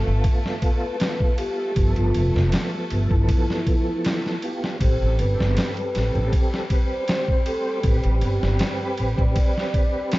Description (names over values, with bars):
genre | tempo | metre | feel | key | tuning
trip hop | 79 BPM | 4/4 | swing 53% on 16ths | A minor | A4 = 441 Hz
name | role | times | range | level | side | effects
pure breathy sine lead | melody | 0.0-10.2 s | E4 to D5 | -28 LUFS | equal | chorus, dub echo
tonewheel organ | accompaniment | 0.0-10.2 s | F3 to C5 | -28 LUFS | right 1 dB | chorus vibrato, slow rotary speaker, tremolo
rich chamber string section | sustained chords | 0.0-10.2 s | G3 to A3 | -36 LUFS | left 2 dB | none
upright bass | bass | 0.0-9.3 s | F1 to A1 | -22 LUFS | equal | none
trip hop sampler-style drum kit | drums | 0.2-10.2 s | kick drum, ride cymbal, snare drum | -23 LUFS | equal | none
room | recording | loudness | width
digital ambience | dark, warm production, vinyl crackle, nothing above 7.7 kHz | -19 LUFS | side -19 dB against mid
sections
0.0-10.2 A section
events
none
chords
0.0 G7; 4.8 Am7